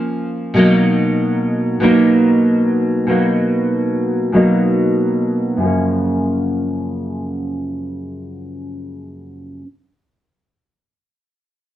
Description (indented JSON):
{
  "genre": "indie pop",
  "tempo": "95 BPM",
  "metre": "4/4",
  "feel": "straight",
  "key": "F# major",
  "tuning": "A4 = 440 Hz",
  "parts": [
    { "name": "nylon-string guitar", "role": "accompaniment", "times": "0.0-9.7 s", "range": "F#2 to D#4", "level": "-15 LUFS", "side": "equal", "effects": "analog chorus, warbly pitch drift, low-pass filter" }
  ],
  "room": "moderate small room reverb, RT60 0.5 s",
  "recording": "dark, warm production",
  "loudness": "-14 LUFS",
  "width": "side -12 dB against mid",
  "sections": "0.0-5.6 A section; 5.6-8.1 B section",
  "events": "filter sweep on nylon-string guitar 0.0-5.6",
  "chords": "0.0 F#maj7 (rootless); 0.5 Bmaj7; 5.6 F#maj7",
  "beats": "| 0.55 1.18 1.81 2.44 | 3.07 3.71 4.34 4.97 | 5.60 6.23 6.86 7.50"
}